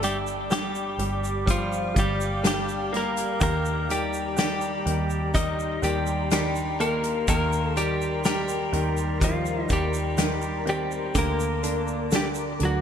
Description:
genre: pop ballad.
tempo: 62 BPM.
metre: 4/4.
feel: straight.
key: G minor.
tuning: A4 = 439 Hz.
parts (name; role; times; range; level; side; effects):
direct-recorded clean electric guitar; melody; 0.0-12.8 s; F3 to Eb5; -27 LUFS; equal; ping-pong delay.
bright upright piano; accompaniment; 0.0-12.8 s; D3 to G3; -32 LUFS; right 5 dB; none.
airy breathy pad; sustained chords; 0.0-12.8 s; G4 to D6; -34 LUFS; left 2 dB; chorus.
direct-recorded clean electric guitar; arpeggios; 0.0-12.8 s; G2 to Bb4; -33 LUFS; left 7 dB; none.
vintage muted fingered electric bass; bass; 0.0-12.8 s; G1 to Eb2; -30 LUFS; equal; none.
loose indie drum kit; drums; 0.0-12.8 s; hi-hat, kick drum, snare drum; -27 LUFS; equal; gated reverb.
egg shaker; percussion; 0.0-12.6 s; none; -40 LUFS; right 9 dB; none.
room: moderate plate reverb, RT60 3.0 s.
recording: bright 1980s-style digital production.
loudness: -23 LUFS.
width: side -8 dB against mid.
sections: 0.0-12.8 A section.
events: none.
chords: 0.0 Gm; 3.4 Ebmaj7; 11.2 Gm/D.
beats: 0.51 1.48 2.44 | 3.41 4.38 5.35 6.32 | 7.28 8.25 9.22 10.19 | 11.15 12.12.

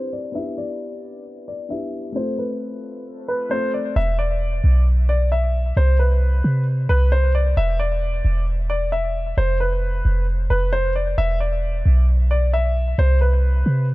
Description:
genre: hip hop, trap.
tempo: 133 BPM.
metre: 4/4.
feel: half-time.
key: E phrygian.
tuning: A4 = 440 Hz.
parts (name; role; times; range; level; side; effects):
dark baby grand piano; melody; 0.0-13.8 s; B4 to E5; -25 LUFS; left 1 dB; ping-pong delay.
felt-muted upright piano; accompaniment; 0.0-4.0 s; A3 to A4; -29 LUFS; left 2 dB; none.
clean 808-style bass; bass; 4.0-13.9 s; E1 to C3; -18 LUFS; equal; none.
room: little or no reverb.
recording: dark, warm production, low-pass filter.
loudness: -18 LUFS.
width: side -19 dB against mid.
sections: 0.0-4.0 A section; 4.0-13.9 B section.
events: filter sweep 0.0-4.0.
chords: 0.4 Em7; 2.2 F; 4.0 E5; 5.8 N.C.; 7.6 Dsus2/E; 9.4 B(b5, no3)/F; 11.2 E5; 13.0 N.C..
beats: | 0.35 0.80 1.25 1.71 | 2.16 2.61 3.06 3.51 | 3.96 4.41 4.86 5.32 | 5.77 6.22 6.67 7.12 | 7.57 8.02 8.47 8.92 | 9.38 9.83 10.28 10.73 | 11.18 11.63 12.08 12.53 | 12.98 13.44 13.89.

